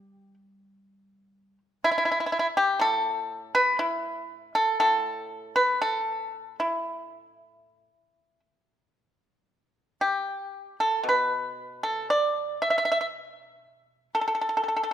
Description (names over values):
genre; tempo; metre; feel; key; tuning
chinese traditional, Chinese solo plucked strings; 59 BPM; 4/4; uneven beats, rubato; A shang mode; A4 = 442 Hz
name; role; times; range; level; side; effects
pipa; solo; 0.0-14.9 s; A2 to E5; -24 LUFS; equal; none
room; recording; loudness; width
moderate scoring stage reverb, RT60 1.6 s; minimal, uncompressed stereo recording; -24 LUFS; side -10 dB against mid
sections
0.0-14.9 A section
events
none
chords
none